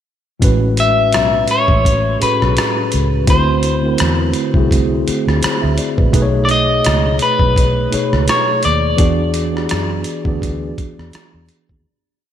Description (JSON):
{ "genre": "R&B, neo-soul", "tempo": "84 BPM", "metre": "4/4", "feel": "swing 55% on 16ths", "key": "A major", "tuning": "A4 = 440 Hz", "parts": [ { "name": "mellow tine electric piano", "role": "accompaniment", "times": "0.4-11.9 s", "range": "A2 to E5", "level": "-18 LUFS", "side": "right 1 dB", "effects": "slow stereo tremolo, slapback echo" }, { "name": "vintage muted fingered electric bass", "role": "bass", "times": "0.4-11.8 s", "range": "A1 to F#2", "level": "-18 LUFS", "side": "equal", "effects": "none" }, { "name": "boom bap sampler-style drum kit", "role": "drums", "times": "0.4-11.8 s", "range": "hi-hat, kick drum, rim click", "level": "-19 LUFS", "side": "equal", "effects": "none" }, { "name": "electric guitar at the edge of break-up", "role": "melody", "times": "0.8-11.1 s", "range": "B4 to E5", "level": "-17 LUFS", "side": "left 2 dB", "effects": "none" } ], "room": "moderate lush hall reverb, RT60 2.9 s", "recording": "big arena sound", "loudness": "-12 LUFS", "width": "side -10 dB against mid", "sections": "0.4-11.8 verse", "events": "fade-out 9.0-11.8", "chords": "0.4 Amaj13; 3.3 D9; 6.1 B13; 9.0 E9" }